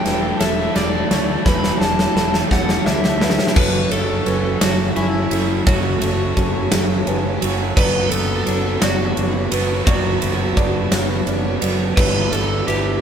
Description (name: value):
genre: post-rock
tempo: 57 BPM (dotted quarters)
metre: 6/8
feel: straight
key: unclear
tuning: A4 = 440 Hz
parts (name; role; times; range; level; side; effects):
- overdriven slide guitar; melody; 0.0-13.0 s; E4 to B5; -24 LUFS; left 1 dB; none
- pedal harmonium; sustained chords; 0.0-13.0 s; G3 to A5; -33 LUFS; left 1 dB; none
- felt-muted upright piano; arpeggios; 0.0-13.0 s; A4 to C#6; -31 LUFS; right 3 dB; none
- twangy electric guitar; arpeggios; 0.0-13.0 s; E3 to A4; -29 LUFS; left 2 dB; phaser
- crunchy overdriven guitar; riff; 0.0-3.6 s; E4 to A4; -27 LUFS; left 8 dB; spring reverb
- crunchy overdriven guitar; riff; 0.0-13.0 s; E2 to B3; -24 LUFS; right 7 dB; none
- fuzz fingered electric bass; bass; 0.1-13.0 s; E1 to D2; -23 LUFS; equal; overdrive
- huge arena drum kit; drums; 0.1-12.8 s; crash cymbal, kick drum, ride cymbal, snare drum; -19 LUFS; equal; none
room: moderate studio reverb, RT60 0.6 s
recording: band playing live in one room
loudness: -16 LUFS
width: side -8 dB against mid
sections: 0.0-3.6 A section; 3.6-13.0 B section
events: build-up 0.0-3.6; drum fill 0.0-3.6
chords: 0.0 A7sus4/E; 3.6 F#m; 7.8 Bm7/F#; 12.0 Em7/G